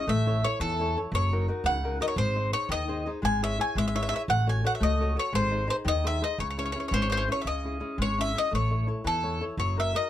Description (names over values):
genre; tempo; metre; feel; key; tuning
italian folk, Italian serenade; 114 BPM (dotted quarters); 6/8; straight; C# harmonic minor; A4 = 440 Hz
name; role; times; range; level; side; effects
bowl-back mandolin; melody; 0.0-10.1 s; A4 to G#5; -28 LUFS; left 1 dB; none
flamenco guitar; accompaniment; 0.0-10.1 s; C#3 to C#5; -32 LUFS; left 2 dB; none
upright bass; bass; 0.1-9.9 s; F#1 to E2; -29 LUFS; equal; none
room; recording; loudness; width
little or no reverb; close, detailed microphones; -25 LUFS; side -12 dB against mid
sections
0.0-7.5 A section; 7.5-10.1 A section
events
none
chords
0.1 A; 1.1 F#6; 2.2 G#; 3.2 C#m/G#; 4.3 F#m/A; 5.3 G#; 6.4 C#m; 8.5 A; 9.6 F#6